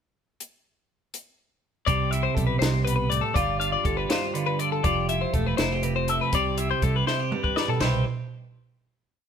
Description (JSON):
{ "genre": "math rock and midwest emo", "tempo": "81 BPM (dotted quarters)", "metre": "6/8", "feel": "straight", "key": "C major", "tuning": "A4 = 439 Hz", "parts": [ { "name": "compact cocktail drum kit", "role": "drums", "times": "0.4-7.9 s", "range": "hi-hat, kick drum, snare drum, splash cymbal, toms", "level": "-28 LUFS", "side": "equal", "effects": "none" }, { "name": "twelve-string electric guitar", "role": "accompaniment", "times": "1.9-8.1 s", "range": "G2 to B4", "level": "-28 LUFS", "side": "right 6 dB", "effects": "none" }, { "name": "twelve-string electric guitar", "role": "arpeggios", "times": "1.9-8.0 s", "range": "A4 to F5", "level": "-27 LUFS", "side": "left 8 dB", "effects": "none" }, { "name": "fingered electric bass", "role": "bass", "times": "1.9-8.0 s", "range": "E1 to C2", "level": "-28 LUFS", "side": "equal", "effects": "none" } ], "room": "moderate stone room reverb, RT60 1.0 s", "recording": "band playing live in one room", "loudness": "-22 LUFS", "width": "side -8 dB against mid", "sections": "0.4-1.9 pickup bar; 1.9-7.8 A section; 7.8-9.3 final chord", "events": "drum fill 7.1-7.8", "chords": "0.4 N.C.; 1.9 Cmaj7; 3.4 G9; 4.8 Fmaj9; 6.3 Cmaj7" }